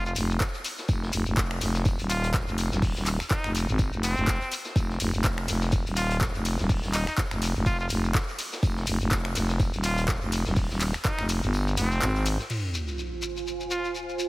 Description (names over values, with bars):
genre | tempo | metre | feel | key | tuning
bass house | 124 BPM | 4/4 | swing 57% on 16ths | F minor | A4 = 440 Hz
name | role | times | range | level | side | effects
growling FM bass | bass | 0.0-12.4 s | Eb1 to Ab1 | -27 LUFS | equal | tube saturation, sidechain pumping
trumpet with straight mute | melody | 0.1-13.9 s | C4 to F4 | -33 LUFS | equal | digital delay
shekere | percussion | 0.1-14.3 s | none | -36 LUFS | left 3 dB | none
house drum kit | drums | 0.2-12.6 s | crash cymbal, finger snaps, handclaps, hi-hat, ride cymbal | -33 LUFS | equal | none
vintage drum kit | drums | 0.2-12.5 s | hi-hat, snare drum, tambourine | -39 LUFS | equal | sidechain pumping on hats, high-pass filter on hats, high-pass filter on snare, sidechain pumping on perc, high-pass filter on perc, high-pass filter on room
electronic kick drum | drums | 0.4-11.2 s | none | -26 LUFS | equal | none
sub drop | sound effects | 12.5-14.3 s | none | -34 LUFS | equal | none
ethereal airy pad | texture | 12.9-14.3 s | F4 to Ab5 | -32 LUFS | right 5 dB | ensemble chorus, built-in reverb, phaser, sidechain pumping
room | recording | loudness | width
light reverb, small room ambience | heavily compressed radio sound | -24 LUFS | side -20 dB against mid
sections
0.0-12.5 A section; 12.5-14.3 B section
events
drop 0.0-12.5; kick drops out 11.5-12.5; impact 12.5-14.3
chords
0.0 N.C.; 12.5 Fm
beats
0.40 | 0.89 1.37 1.85 2.34 | 2.82 3.31 3.79 4.27 | 4.76 5.24 5.73 6.21 | 6.69 7.18 7.66 8.14 | 8.63 9.11 9.60 10.08 | 10.56 11.05 11.53 12.02 | 12.50 12.98 13.47 13.95